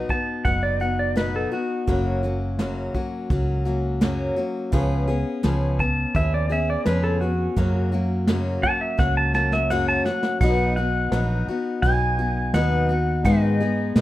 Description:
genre	honky-tonk and classic country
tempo	84 BPM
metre	4/4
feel	straight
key	B major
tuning	A4 = 435 Hz
part	dark grand piano	accompaniment	0.0-14.0 s	D#4 to E#5	-36 LUFS	right 4 dB	plate reverb
part	picked steel-string acoustic guitar	accompaniment	0.0-14.0 s	F#2 to G#4	-26 LUFS	left 3 dB	plate reverb
part	vintage muted fingered electric bass	bass	0.0-14.0 s	F#1 to B2	-24 LUFS	right 1 dB	none
part	pedal steel guitar	melody	0.1-14.0 s	F#4 to A5	-25 LUFS	equal	plate reverb
part	vintage brush drum kit	drums	0.1-14.0 s	crash cymbal, hi-hat, kick drum, snare drum	-24 LUFS	right 1 dB	none
room	light reverb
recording	rough home demo mix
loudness	-20 LUFS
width	side -15 dB against mid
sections	0.0-10.4 A section; 10.4-14.0 B section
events	pedal steel guitar solo 0.0-10.4; drum fill 9.0-10.4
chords	0.0 B; 1.9 F#; 4.7 C#7; 7.6 F#; 10.4 B; 13.3 G#m

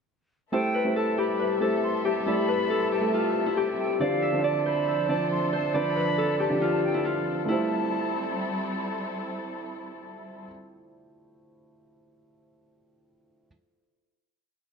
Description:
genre	hip hop, drill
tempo	138 BPM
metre	4/4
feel	half-time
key	A minor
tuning	A4 = 440 Hz
part	Celtic harp	melody	0.5-10.1 s	E4 to E5	-27 LUFS	left 1 dB	low-pass filter, ping-pong delay
part	silver concert flute	second line	0.5-8.7 s	F5 to C6	-34 LUFS	left 4 dB	ping-pong delay
part	felt-muted upright piano	accompaniment	0.5-13.5 s	D3 to E5	-30 LUFS	right 2 dB	low-pass filter
part	muted symphonic string section	sustained chords	0.5-10.5 s	F3 to E5	-33 LUFS	equal	none
room	moderate recital hall reverb, RT60 1.5 s, small room ambience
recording	none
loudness	-24 LUFS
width	side -5 dB against mid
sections	0.5-7.5 breakdown; 7.5-11.0 final chord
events	none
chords	0.5 Am7; 4.0 Dm7; 7.5 Am7

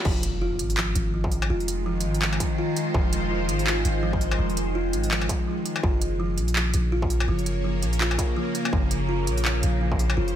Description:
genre	half-time drum and bass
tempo	166 BPM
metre	4/4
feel	swing 58% on 16ths, half-time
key	F phrygian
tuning	A4 = 440 Hz
part	industrial drum kit	drums	0.0-10.3 s	crash cymbal, handclaps, hi-hat, struck metal	-29 LUFS	equal	small room reverb
part	swell and impact	sound effects	0.0-1.5 s	none	-35 LUFS	equal	none
part	bowed-like drone	sustained chords	1.1-10.4 s	Db3 to Db5	-30 LUFS	equal	built-in reverb, phaser, sidechain pumping
part	buzzing kalimba	arpeggios	0.1-10.3 s	F3 to F4	-30 LUFS	equal	digital delay
part	long sustained 808-style bass	bass	0.1-10.4 s	F1 to Bb1	-26 LUFS	equal	none
part	electronic kick drum	drums	0.1-10.0 s	none	-26 LUFS	equal	distortion, small room reverb
room	light reverb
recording	none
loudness	-22 LUFS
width	side -10 dB against mid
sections	0.1-10.4 A section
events	drop 0.1-10.4; impact 0.1-1.5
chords	0.1 Fm7; 5.8 Gb

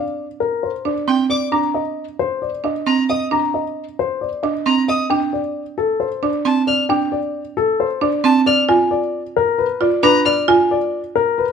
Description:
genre	classical, minimalist pattern music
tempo	134 BPM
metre	4/4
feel	straight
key	unclear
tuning	A4 = 440 Hz
part	dark baby grand piano	melody	0.0-11.5 s	A4 to Bb5	-19 LUFS	left 6 dB	none
part	buzzing marimba with hard mallets	arpeggios	0.0-10.8 s	C4 to F4	-19 LUFS	right 7 dB	none
part	rich violin	arpeggios	1.1-10.4 s	G5 to F6	-20 LUFS	left 2 dB	none
room	light reverb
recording	none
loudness	-16 LUFS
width	side -6 dB against mid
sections	0.0-11.5 A section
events	none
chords	0.0 Csus2; 1.5 Cmadd9; 5.1 D7(no3); 8.7 Bb7b9

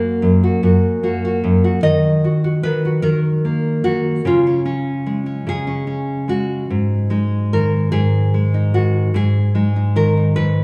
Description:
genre	folk, solo fingerstyle acoustic guitar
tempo	49 BPM (dotted quarters)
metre	6/8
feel	straight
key	unclear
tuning	A4 = 437 Hz
part	nylon-string guitar	solo	0.0-10.6 s	F#2 to D#5	-17 LUFS	equal	none
room	wet recital hall reverb, RT60 1.6 s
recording	recorded in a church or concert hall, studio ambience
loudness	-17 LUFS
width	mono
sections	0.0-6.7 A section; 6.7-10.6 B section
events	none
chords	0.0 F#; 1.8 D#m; 4.3 C#; 6.7 G#7(no3)

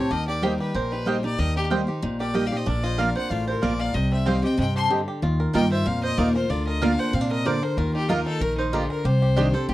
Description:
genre	bluegrass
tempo	188 BPM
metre	4/4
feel	swing 53% on 8ths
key	unclear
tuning	A4 = 440 Hz
part	bluegrass banjo	melody	0.0-9.7 s	G3 to C5	-31 LUFS	right 3 dB	none
part	clear fiddle	melody	0.0-9.7 s	Eb4 to C6	-29 LUFS	left 3 dB	none
part	lap resonator guitar	second line	0.0-4.9 s	Eb4 to A5	-32 LUFS	left 5 dB	none
part	picked steel-string acoustic guitar	accompaniment	0.0-9.7 s	G2 to Bb4	-26 LUFS	left 1 dB	none
part	upright bass	bass	0.1-9.7 s	G1 to Bb2	-26 LUFS	equal	none
part	mandolin	stabs	0.4-9.5 s	Bb3 to C6	-25 LUFS	right 4 dB	none
room	little or no reverb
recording	dry, close 1970s-style studio recording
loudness	-21 LUFS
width	side -16 dB against mid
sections	0.0-5.2 A section; 5.2-9.7 B section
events	none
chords	0.1 Eb; 2.7 Bb; 3.9 Cm; 5.2 Ebsus2; 6.5 Bb/D; 7.8 Ebsus2; 9.1 Cmadd9

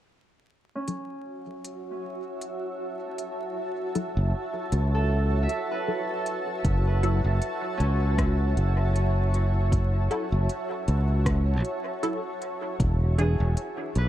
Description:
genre	ambient dub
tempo	78 BPM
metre	4/4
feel	swing 56% on 16ths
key	F# minor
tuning	A4 = 439 Hz
part	granular cloud pad	sustained chords	1.3-14.1 s	E4 to D6	-32 LUFS	equal	built-in reverb
part	Celtic harp	arpeggios	0.8-14.1 s	C#4 to E5	-37 LUFS	right 2 dB	low-pass filter, tape echo
part	filtered dub chord stab	stabs	0.9-13.4 s	E3 to A4	-33 LUFS	left 1 dB	phaser, ensemble chorus, dub echo
part	organic electronic drum kit	drums	0.9-14.1 s	hi-hat, rim click	-38 LUFS	left 1 dB	dub echo
part	modern bright fingered electric bass	bass	4.2-14.1 s	E1 to C#2	-23 LUFS	equal	none
part	electronic kick drum	drums	6.6-13.0 s	none	-27 LUFS	equal	overdrive
room	little or no reverb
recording	dark, warm production, vinyl crackle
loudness	-24 LUFS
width	side -12 dB against mid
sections	0.5-6.6 A section; 6.6-14.1 B section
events	filter sweep on ambient pad 0.5-6.6; filter sweep on harp 0.5-6.6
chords	0.5 F#m7; 12.8 E7

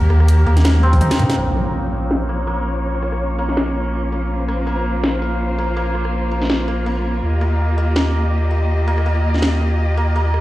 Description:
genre	half-time drum and bass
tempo	164 BPM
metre	4/4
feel	swing 55% on 16ths, half-time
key	Bb dorian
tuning	A4 = 440 Hz
part	warm studio cello section	sustained chords	0.0-10.4 s	Eb3 to Eb5	-24 LUFS	left 1 dB	sidechain pumping, low-pass filter
part	santur	arpeggios	0.0-10.4 s	Bb3 to Eb4	-25 LUFS	right 1 dB	low-pass filter, tape echo
part	saturated sub bass	bass	0.0-10.4 s	Bb1 to G2	-18 LUFS	equal	none
part	drum and bass drum kit	drums	0.1-10.4 s	hi-hat, rim click, snare drum, toms	-21 LUFS	equal	overdrive, low-pass filter on hats, studio reverb, low-pass filter on snare, low-pass filter on toms
part	electronic kick drum	drums	0.9-1.0 s	none	-16 LUFS	equal	overdrive, studio reverb
part	impact	sound effects	1.4-2.8 s	none	-26 LUFS	equal	none
room	light reverb, digital ambience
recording	played on a big sound system in a bare room, stone room reverb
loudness	-16 LUFS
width	side -16 dB against mid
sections	0.0-1.4 A section; 1.4-10.4 B section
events	drop 0.0-1.4; drum fill 0.6-1.4; break 1.0-1.4; impact 1.4-2.8; filter sweep on drum 1.4-10.4; filter sweep on cello section 1.4-10.4; filter sweep on santur 1.4-10.4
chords	0.0 Eb; 1.4 Bbm; 7.2 Ebadd9

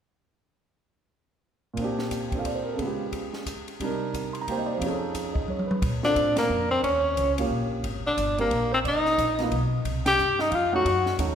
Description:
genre	jazz, small-group swing and bop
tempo	178 BPM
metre	3/4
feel	swing 62% on 8ths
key	unclear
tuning	A4 = 441 Hz
part	warm baby grand piano	accompaniment	1.7-11.3 s	F2 to C6	-30 LUFS	right 2 dB	none
part	compact cocktail drum kit	drums	1.8-11.3 s	hi-hat, kick drum, ride cymbal, snare drum, toms	-33 LUFS	equal	none
part	upright bass	bass	5.8-11.3 s	G1 to Bb2	-30 LUFS	equal	none
part	clear tenor saxophone	melody	6.0-11.2 s	Bb3 to G4	-24 LUFS	left 2 dB	none
part	warm alto saxophone	second line	6.1-11.2 s	Bb4 to G5	-31 LUFS	right 3 dB	none
room	wet concert hall reverb, RT60 2.1 s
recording	recorded in a church or concert hall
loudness	-23 LUFS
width	side -8 dB against mid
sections	1.8-5.8 A section; 5.8-11.3 B section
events	drum fill 5.5-5.8; band accent 6.3, 10.0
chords	1.8 Bb69; 2.8 Db7#11; 3.8 Cm7; 4.8 F7alt; 5.8 Bbmaj7; 6.8 Eb7; 7.8 Abmaj7(b5, no3); 8.8 Gaug; 9.9 Cm

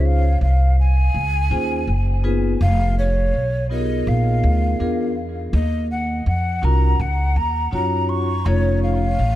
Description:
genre	hip hop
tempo	82 BPM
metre	4/4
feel	swing 60% on 16ths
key	Db major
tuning	A4 = 440 Hz
part	breathy mellow jazz flute	melody	0.0-9.4 s	Db5 to Db6	-24 LUFS	equal	analog delay
part	vibraphone with medium hard mallets	accompaniment	0.0-9.0 s	Cb4 to Db5	-26 LUFS	moving between left 3 dB and right 3 dB	auto-pan, analog delay
part	upright bass	bass	0.0-9.4 s	F1 to Gb2	-18 LUFS	equal	none
room	small room reverb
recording	echo-heavy mix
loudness	-17 LUFS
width	side -14 dB against mid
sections	0.0-9.4 A section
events	none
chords	0.0 Dbmaj7; 2.6 Fm7b5; 4.1 Bb7b9; 5.5 Ebm9; 8.5 F7b13

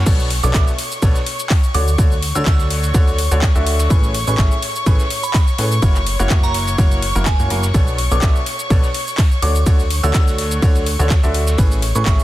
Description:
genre	piano house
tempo	125 BPM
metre	4/4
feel	swing 54% on 16ths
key	B dorian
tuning	A4 = 442 Hz
part	rich studio violin section	sustained chords	0.0-12.2 s	C#5 to C#6	-26 LUFS	left 2 dB	sidechain pumping
part	clear grand piano	riff	0.0-12.2 s	A2 to E5	-24 LUFS	equal	sidechain pumping, dub echo
part	plucky analog bass	bass	0.0-12.2 s	F#1 to A2	-18 LUFS	equal	sidechain pumping
part	dusty soul sampler-style drum kit	drums	0.1-12.2 s	ride cymbal, snare drum	-34 LUFS	right 3 dB	sidechain pumping on cymbals, high-pass filter on cymbals, high-pass filter on snare
part	electronic kick drum	drums	0.1-12.2 s	none	-14 LUFS	equal	overdrive
part	house drum kit	drums	0.1-12.2 s	crash cymbal, handclaps, hi-hat, ride cymbal, shaker	-25 LUFS	left 1 dB	overdrive
part	glassy synth bell	melody	0.4-12.1 s	G#5 to E6	-27 LUFS	right 4 dB	chorus, phaser, dub echo
room	little or no reverb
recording	dense, heavily limited modern master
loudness	-14 LUFS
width	side -15 dB against mid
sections	0.0-12.2 A section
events	none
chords	0.1 Bm9; 1.7 Dmaj7; 3.9 Amaj9; 5.8 F#7; 7.7 Bm9; 9.4 Dmaj7; 11.6 Amaj9

